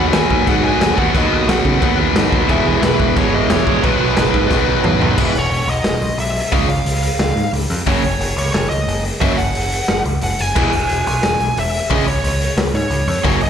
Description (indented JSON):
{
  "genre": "punk rock",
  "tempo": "178 BPM",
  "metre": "4/4",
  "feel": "straight",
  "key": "B major",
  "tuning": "A4 = 440 Hz",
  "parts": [
    { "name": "smooth overdriven lead guitar", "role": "melody", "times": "0.0-13.5 s", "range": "B4 to G#5", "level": "-21 LUFS", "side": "right 1 dB", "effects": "slapback echo" },
    { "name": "overdriven electric guitar", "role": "riff", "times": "0.0-13.4 s", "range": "F#2 to F#4", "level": "-20 LUFS", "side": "right 12 dB", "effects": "slapback echo" },
    { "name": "tight distorted guitar", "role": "riff", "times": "0.0-13.4 s", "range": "E2 to C#4", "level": "-19 LUFS", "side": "left 13 dB", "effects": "distortion, slapback echo" },
    { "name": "growling picked electric bass", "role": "bass", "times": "0.0-13.5 s", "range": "E1 to C#3", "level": "-20 LUFS", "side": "equal", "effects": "overdrive" },
    { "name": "raw garage drum kit", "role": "drums", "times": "0.1-13.5 s", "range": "crash cymbal, hi-hat, kick drum, snare drum, toms", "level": "-19 LUFS", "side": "equal", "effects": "none" }
  ],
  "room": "little or no reverb",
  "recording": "live gig heard through the venue's PA, recital hall reverb",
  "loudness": "-14 LUFS",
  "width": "side -8 dB against mid",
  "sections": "0.0-5.2 A section; 5.2-13.5 B section",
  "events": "drum fill 4.5-5.2; half time 5.2-13.5",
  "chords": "0.0 B/D#; 2.5 E; 3.8 B; 5.2 E5; 6.5 C#; 7.9 F#5; 10.6 E; 11.9 C#",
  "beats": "0.13 0.47 0.80 | 1.14 1.48 1.81 2.15 | 2.48 2.82 3.16 3.49 | 3.83 4.17 4.50 4.84 | 5.18 5.51 5.85 6.19 | 6.52 6.86 7.20 7.54 | 7.87 8.21 8.55 8.88 | 9.22 9.56 9.89 10.23 | 10.56 10.90 11.24 11.57 | 11.91 12.24 12.58 12.91 | 13.25"
}